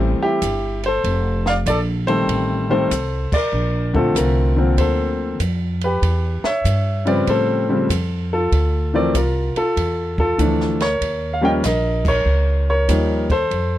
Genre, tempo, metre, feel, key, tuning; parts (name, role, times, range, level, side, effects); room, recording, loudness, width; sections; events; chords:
jazz piano trio; 96 BPM; 4/4; swing 66% on 8ths; A4 = 442 Hz
warm grand piano; melody; 0.0-13.8 s; Db3 to G5; -19 LUFS; left 1 dB
upright bass; bass; 0.0-13.8 s; F1 to A2; -20 LUFS; equal
compact cocktail drum kit; drums; 0.4-13.7 s; crash cymbal, hi-hat, kick drum, ride cymbal, snare drum; -28 LUFS; right 1 dB
light reverb; dry, close 1970s-style studio recording; -16 LUFS; side -13 dB against mid
0.0-13.8 A section
band accent 3.2-3.5, 11.9-12.3
0.0 Fmaj9 (rootless); 1.0 F9; 3.5 Bbmaj9; 6.0 Em; 7.3 A7alt; 8.5 Dm7; 11.0 Eb9